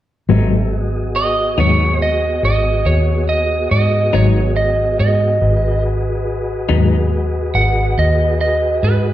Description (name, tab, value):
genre	blues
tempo	47 BPM (dotted quarters)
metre	12/8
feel	straight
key	G# minor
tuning	A4 = 440 Hz
part	clean electric guitar	accompaniment	0.3-7.0 s	G#2 to D#4	-18 LUFS	left 4 dB	harmonic tremolo
part	mellow tonewheel organ	sustained chords	0.3-9.1 s	B3 to E5	-22 LUFS	left 2 dB	slow rotary speaker
part	vintage muted fingered electric bass	bass	0.3-9.1 s	G#1 to G#2	-16 LUFS	equal	none
part	electric slide guitar	second line	1.2-9.1 s	B4 to F#5	-17 LUFS	right 2 dB	none
room	wet recital hall reverb, RT60 1.4 s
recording	recorded in a church or concert hall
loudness	-13 LUFS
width	side -13 dB against mid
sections	0.3-9.1 A section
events	electric slide guitar solo 0.3-9.1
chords	0.3 G#m7